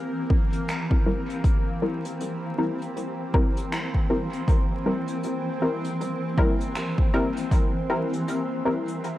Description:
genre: ambient dub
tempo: 79 BPM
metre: 4/4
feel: swing 60% on 16ths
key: C mixolydian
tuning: A4 = 439 Hz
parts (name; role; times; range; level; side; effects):
- granular cloud pad; sustained chords; 0.0-9.2 s; E3 to Bb4; -30 LUFS; left 1 dB; built-in reverb
- filtered dub chord stab; stabs; 0.0-9.2 s; G3 to Bb4; -28 LUFS; left 1 dB; chorus, dub echo
- bubbling stepped-filter texture; texture; 0.0-9.2 s; Bb3 to Bb4; -35 LUFS; right 2 dB; chorus, built-in reverb
- electronic kick drum; drums; 0.3-7.7 s; none; -22 LUFS; equal; overdrive
- vintage brush drum kit; drums; 0.5-9.2 s; finger snaps, hi-hat; -37 LUFS; equal; dub echo
room: light reverb, small room ambience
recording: echo-heavy mix, vinyl crackle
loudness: -23 LUFS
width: side -15 dB against mid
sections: 0.0-9.2 A section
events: fade-in on ambient pad 0.0-9.2; filter sweep on synth stab 0.0-9.2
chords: 0.0 C7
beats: 0.68 | 1.44 2.20 2.96 3.72 | 4.48 5.24 6.00 6.76 | 7.52 8.28 9.04

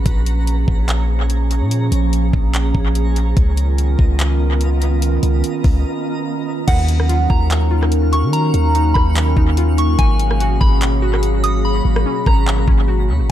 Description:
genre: hip hop, atmospheric cloud-rap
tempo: 145 BPM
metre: 4/4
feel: half-time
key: Eb minor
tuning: A4 = 438 Hz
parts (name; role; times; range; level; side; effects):
- warbly tape-like pad; sustained chords; 0.0-13.3 s; Cb3 to Bb5; -22 LUFS; right 2 dB; chorus, built-in reverb, sidechain pumping
- long sustained 808-style bass; bass; 0.0-13.3 s; Ab1 to Eb3; -16 LUFS; equal; none
- twinkling granular texture; texture; 0.0-13.3 s; Cb4 to Bb6; -31 LUFS; equal; built-in reverb
- trap drum kit; drums; 0.1-12.8 s; crash cymbal, handclaps, hi-hat, kick drum, rim click; -18 LUFS; equal; analog delay
- soft synth bell; melody; 6.7-12.5 s; Gb5 to Eb6; -22 LUFS; right 1 dB; chorus, phaser, analog delay
- glassy wavetable pluck; arpeggios; 6.7-13.3 s; Eb3 to Gb4; -27 LUFS; left 2 dB; chorus, analog delay
room: digital ambience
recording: echo-heavy mix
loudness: -14 LUFS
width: side -12 dB against mid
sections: 0.0-6.7 A section; 6.7-13.3 B section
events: break 5.8-6.7; hi-hats muted 11.6-13.3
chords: 0.1 Bbm7; 3.4 Db13; 6.7 Ebm9; 10.0 Abm11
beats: | 0.06 0.47 0.88 1.30 | 1.71 2.13 2.54 2.95 | 3.37 3.78 4.19 4.61 | 5.02 5.44 5.85 6.26 | 6.68 7.09 7.50 7.92 | 8.33 8.75 9.16 9.57 | 9.99 10.40 10.81 11.23 | 11.64 12.06 12.47 12.88 | 13.30

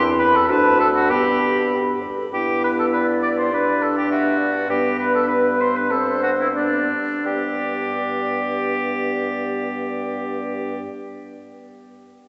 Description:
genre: quick classical-period movement for wind quintet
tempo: 85-103 BPM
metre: 2/4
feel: straight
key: G major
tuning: A4 = 441 Hz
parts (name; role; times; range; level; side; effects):
- concert flute; melody; 0.0-10.8 s; B4 to C6; -28 LUFS; equal; none
- warm oboe; second line; 0.0-10.8 s; D4 to D5; -24 LUFS; equal; none
- mellow French horn; accompaniment; 0.0-10.8 s; B3 to B4; -31 LUFS; equal; none
- mellow clarinet; accompaniment; 0.0-10.8 s; B3 to G4; -30 LUFS; equal; none
- mellow bassoon; bass; 0.0-10.8 s; D2 to G2; -27 LUFS; equal; none
room: wet cathedral reverb, RT60 4.1 s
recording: recorded in a church or concert hall, nothing above 8.0 kHz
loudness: -20 LUFS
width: mono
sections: 0.0-2.3 A section; 2.3-7.3 B section; 7.3-10.1 C section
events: slowing down 4.1-7.3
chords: 0.0 C/E; 0.5 D; 1.1 G; 3.5 D/G; 4.7 G; 5.9 Gadd11; 7.3 G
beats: 0.50 | 1.11 1.72 | 2.33 2.92 | 3.51 4.10 | 4.68 5.29 | 5.91 6.56 | 7.25 7.95 | 8.65 9.35

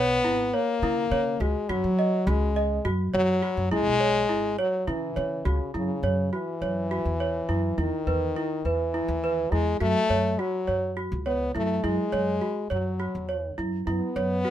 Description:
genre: contemporary instrumental, chamber music in an uneven meter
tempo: 207 BPM (eighths)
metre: 7/8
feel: straight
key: unclear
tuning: A4 = 441 Hz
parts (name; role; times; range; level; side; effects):
- clear French horn; second line; 0.0-14.5 s; C#3 to B3; -27 LUFS; left 3 dB; none
- worn celesta; arpeggios; 0.0-14.5 s; E4 to D#5; -29 LUFS; right 4 dB; none
- upright bass; bass; 0.0-14.4 s; G#1 to F#3; -28 LUFS; equal; none
room: light reverb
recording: none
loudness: -24 LUFS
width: side -11 dB against mid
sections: 0.0-5.7 A section; 5.7-14.5 B section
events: none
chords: 0.0 C#m7; 1.7 F#sus2; 3.7 C#m7; 5.7 F#5; 7.8 E5; 9.8 A6; 11.8 F#5; 13.9 F#7sus4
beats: 0.24 0.53 0.82 1.11 1.40 | 1.69 1.98 2.27 2.56 2.85 3.14 3.42 | 3.71 4.00 4.29 4.58 4.87 5.16 5.45 | 5.74 6.03 6.32 6.62 6.91 7.20 7.49 | 7.78 8.07 8.36 8.65 8.94 9.23 9.52 | 9.81 10.10 10.39 10.68 10.97 11.26 11.55 | 11.84 12.13 12.42 12.71 13.00 13.29 13.58 | 13.87 14.16 14.45

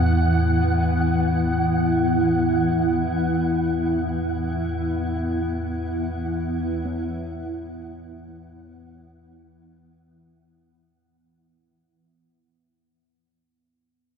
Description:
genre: dark ambient drone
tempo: free time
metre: none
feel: none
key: unclear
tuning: A4 = 441 Hz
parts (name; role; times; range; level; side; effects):
- granular cloud pad; sustained chords; 0.0-10.9 s; E3 to E4; -24 LUFS; equal; built-in reverb
- quartz singing bowl; arpeggios; 0.0-12.6 s; A2 to B3; -31 LUFS; equal; none
- deep rumbling drone; drone; 0.0-11.0 s; E2 to E3; -26 LUFS; left 1 dB; built-in reverb
- flickering grainy texture; texture; 0.0-10.9 s; F#5; -30 LUFS; right 2 dB; built-in reverb
room: wet cathedral reverb, RT60 6.6 s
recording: none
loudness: -20 LUFS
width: side -7 dB against mid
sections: 0.0-10.9 A section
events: filter sweep on synth drone 0.0-10.9; fade-out 0.8-10.9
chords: 0.0 E5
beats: free time

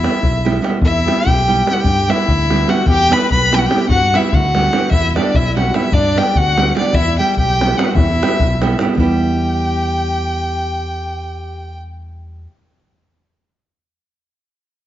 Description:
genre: balkan folk, Balkan wedding band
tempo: 294 BPM (eighths)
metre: 5/8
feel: straight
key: E minor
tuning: A4 = 440 Hz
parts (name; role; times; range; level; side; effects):
- rich violin; melody; 0.0-11.8 s; D5 to B5; -18 LUFS; equal; none
- clear trumpet; second line; 0.0-11.8 s; D4 to B4; -24 LUFS; left 3 dB; none
- nylon-string guitar; accompaniment; 0.0-12.5 s; G3 to G4; -20 LUFS; right 4 dB; none
- fingered electric bass; bass; 0.0-12.5 s; B1 to G2; -20 LUFS; equal; none
- davul; percussion; 0.0-9.2 s; none; -18 LUFS; left 1 dB; none
room: moderate recital hall reverb, RT60 1.4 s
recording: nothing above 7.5 kHz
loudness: -13 LUFS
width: side -12 dB against mid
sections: 0.8-9.0 A section; 9.0-11.0 B section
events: none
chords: 0.0 Em; 1.9 G; 2.9 Em; 3.9 G; 4.9 Em; 5.9 G; 7.0 Em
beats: 0.01 0.21 0.42 0.62 | 0.83 1.03 1.24 1.44 1.65 | 1.85 2.05 2.26 2.46 2.67 | 2.87 3.08 3.28 3.48 3.69 | 3.89 4.10 4.30 4.51 4.71 | 4.91 5.12 5.32 5.53 5.73 | 5.93 6.14 6.34 6.54 6.75 | 6.95 7.15 7.36 7.56 7.76 | 7.96 8.17 8.37 8.57 8.78 | 8.98 9.18 9.38 9.59 9.79 | 9.99 10.19 10.39 10.60 10.80

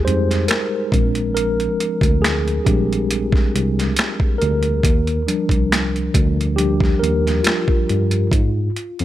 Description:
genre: R&B, neo-soul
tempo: 69 BPM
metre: 4/4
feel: swing 53% on 16ths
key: unclear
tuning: A4 = 440 Hz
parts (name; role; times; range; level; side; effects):
- mellow tine electric piano; accompaniment; 0.0-9.0 s; F3 to C5; -20 LUFS; equal; medium stereo tremolo
- tine electric piano; bass; 0.0-9.0 s; Bb1 to Ab2; -20 LUFS; equal; overdrive, fast stereo tremolo
- boom bap sampler-style drum kit; drums; 0.1-9.0 s; finger snaps, hi-hat, kick drum, snare drum; -18 LUFS; equal; overdrive
room: little or no reverb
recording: none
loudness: -16 LUFS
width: side -13 dB against mid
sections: 0.0-9.0 A section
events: tine electric piano solo 0.0-9.0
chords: 0.0 Fm9; 0.9 Bb13; 4.8 Ebmaj9; 8.3 N.C.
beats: 0.49 | 1.36 2.23 3.10 3.96 | 4.83 5.70 6.57 7.44 | 8.31

